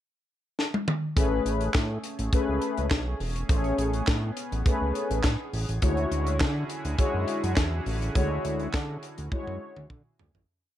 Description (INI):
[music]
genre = early-eighties boogie funk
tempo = 103 BPM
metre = 4/4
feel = straight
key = A major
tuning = A4 = 440 Hz
[part]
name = tight funk drum kit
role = drums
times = 0.6-10.5 s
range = handclaps, hi-hat, kick drum, snare drum, toms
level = -27 LUFS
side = equal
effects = none
[part]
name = mellow synth brass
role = accompaniment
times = 1.2-9.9 s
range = G#3 to C#5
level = -29 LUFS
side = left 3 dB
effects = chorus
[part]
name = chorused pulse-width pad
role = sustained chords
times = 1.2-10.4 s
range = D3 to G#4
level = -37 LUFS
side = right 1 dB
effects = none
[part]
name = fat analog bass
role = bass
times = 1.2-10.5 s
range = E1 to D3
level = -29 LUFS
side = equal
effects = none
[sound]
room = light reverb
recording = dark, warm production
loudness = -25 LUFS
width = side -12 dB against mid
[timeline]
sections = 0.0-1.2 pickup bar; 1.2-10.5 verse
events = drum fill 0.6-1.2, 9.3-10.5; fade-out 8.2-10.5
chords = 0.0 N.C.; 1.2 Amaj9; 5.8 Dmaj9#11